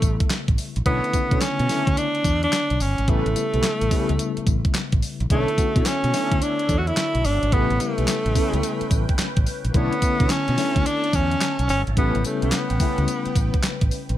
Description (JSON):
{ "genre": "R&B, new jack swing", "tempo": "108 BPM", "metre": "4/4", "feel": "swing 65% on 16ths", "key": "unclear", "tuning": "A4 = 440 Hz", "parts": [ { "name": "breathy alto saxophone", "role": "melody", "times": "0.0-13.9 s", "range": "A3 to F#4", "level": "-24 LUFS", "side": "right 1 dB", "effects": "none" }, { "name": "FM electric piano with tremolo", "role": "accompaniment", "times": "0.0-14.2 s", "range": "C#3 to C#5", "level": "-29 LUFS", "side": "left 7 dB", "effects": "none" }, { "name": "mellow fretless electric bass", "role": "bass", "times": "0.0-14.2 s", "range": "G1 to B2", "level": "-24 LUFS", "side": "equal", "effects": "none" }, { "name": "clean 12-bit digital drum machine", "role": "drums", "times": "0.0-14.2 s", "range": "handclaps, hi-hat, kick drum, snare drum, tambourine", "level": "-23 LUFS", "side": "equal", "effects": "none" }, { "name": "mellow synth brass", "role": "stabs", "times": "0.9-13.0 s", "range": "C#4 to C#5", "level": "-32 LUFS", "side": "right 2 dB", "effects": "chorus" }, { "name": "phased analog pad", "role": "sustained chords", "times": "5.3-14.2 s", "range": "D3 to A5", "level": "-33 LUFS", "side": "equal", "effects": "phaser, chorus" } ], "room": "little or no reverb", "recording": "none", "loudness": "-19 LUFS", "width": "side -13 dB against mid", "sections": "0.0-14.2 A section", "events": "none", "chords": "0.0 A9; 0.9 Bm11; 3.1 A9; 5.3 Bm11; 7.5 A9; 9.7 Bm11; 12.0 A9" }